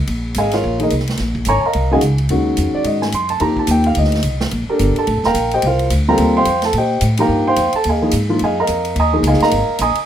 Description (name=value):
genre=modal jazz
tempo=216 BPM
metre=4/4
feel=swing 60% on 8ths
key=unclear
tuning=A4 = 437 Hz
part: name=upright bass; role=bass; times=0.0-10.0 s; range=Eb1 to Bb2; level=-18 LUFS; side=equal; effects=none
part: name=swinging big-band drum kit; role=drums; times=0.1-10.0 s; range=hi-hat, kick drum, ride cymbal, snare drum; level=-27 LUFS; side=right 1 dB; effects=none
part: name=dark grand piano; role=accompaniment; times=0.4-10.0 s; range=Eb3 to Eb6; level=-16 LUFS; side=equal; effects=none
room=light reverb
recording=minimal, uncompressed stereo recording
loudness=-14 LUFS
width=side -10 dB against mid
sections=0.0-10.1 A section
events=none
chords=0.0 Eb9sus4; 3.4 F9sus4; 7.8 Ebsus4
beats=| 0.07 0.35 0.63 0.91 | 1.19 1.46 1.74 2.02 | 2.30 2.57 2.85 3.13 | 3.41 3.68 3.96 4.24 | 4.52 4.79 5.07 5.35 | 5.63 5.91 6.18 6.46 | 6.74 7.02 7.29 7.57 | 7.85 8.13 8.40 8.68 | 8.96 9.24 9.52 9.79